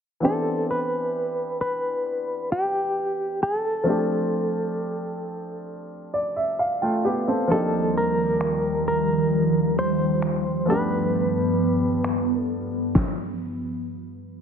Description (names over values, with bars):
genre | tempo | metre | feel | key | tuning
contemporary R&B | 66 BPM | 4/4 | straight | unclear | A4 = 440 Hz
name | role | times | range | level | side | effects
clean electric guitar | melody | 0.2-13.4 s | G4 to C5 | -25 LUFS | equal | tremolo
clear grand piano | accompaniment | 0.2-13.0 s | E3 to G5 | -26 LUFS | equal | none
glassy FM pad | sustained chords | 7.5-12.9 s | Eb2 to B3 | -24 LUFS | right 1 dB | ensemble chorus, built-in reverb
dusty soul sampler-style drum kit | drums | 8.4-13.2 s | finger snaps, kick drum, snare drum | -25 LUFS | left 1 dB | none
room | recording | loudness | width
moderate concert hall reverb, RT60 1.8 s, digital ambience | low-pass filter | -22 LUFS | side -7 dB against mid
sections
0.2-14.4 A section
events
grand piano fill 5.7-7.5; stop 13.0-14.4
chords
0.2 Cmaj9; 3.9 F69; 7.5 Ebmaj9; 10.7 G7